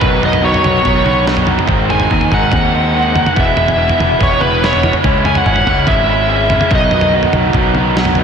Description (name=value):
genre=indie rock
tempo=144 BPM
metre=4/4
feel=straight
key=unclear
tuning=A4 = 440 Hz
part: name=biting lead guitar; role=melody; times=0.0-7.1 s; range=B4 to G#5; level=-16 LUFS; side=equal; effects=overdrive, slapback echo, tape echo
part: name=raw garage guitar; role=riff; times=0.0-8.2 s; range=G#2 to E4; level=-15 LUFS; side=right 1 dB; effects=overdrive, slapback echo
part: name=growling fingered electric bass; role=bass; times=0.0-8.2 s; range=E1 to D#2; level=-18 LUFS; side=equal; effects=overdrive
part: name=dusty soul sampler-style drum kit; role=drums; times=0.0-8.2 s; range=kick drum, snare drum, toms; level=-17 LUFS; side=equal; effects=none
room=moderate lush hall reverb, RT60 2.0 s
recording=big arena sound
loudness=-10 LUFS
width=side -7 dB against mid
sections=0.0-8.2 A section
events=none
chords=0.0 Badd9; 1.7 G#; 3.4 E; 5.0 C#m; 6.7 B